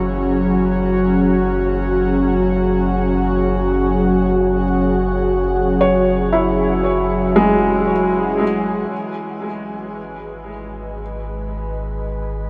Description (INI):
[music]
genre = ambient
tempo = free time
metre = none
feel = none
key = unclear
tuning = A4 = 440 Hz
[part]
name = airy breathy pad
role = sustained chords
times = 0.0-12.5 s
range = F#3 to D#5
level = -20 LUFS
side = equal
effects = chorus, shimmer reverb
[part]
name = felt-muted upright piano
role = arpeggios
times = 0.0-12.5 s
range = E3 to C#5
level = -23 LUFS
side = equal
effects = diffuse ambient delay, shimmer reverb
[part]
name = round analog bass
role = bass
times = 0.0-12.5 s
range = F#1 to G#1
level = -27 LUFS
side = equal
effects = none
[part]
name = organ-like drone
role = drone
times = 0.0-9.0 s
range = F#3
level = -32 LUFS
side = equal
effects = none
[sound]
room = wet huge ambient reverb, RT60 9.0 s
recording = worn, warbling old tape, cassette tape, warbly pitch drift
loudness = -17 LUFS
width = mono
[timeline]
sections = 0.0-8.9 A section; 8.9-12.5 B section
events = none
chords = 0.0 F#5; 8.9 G#m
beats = free time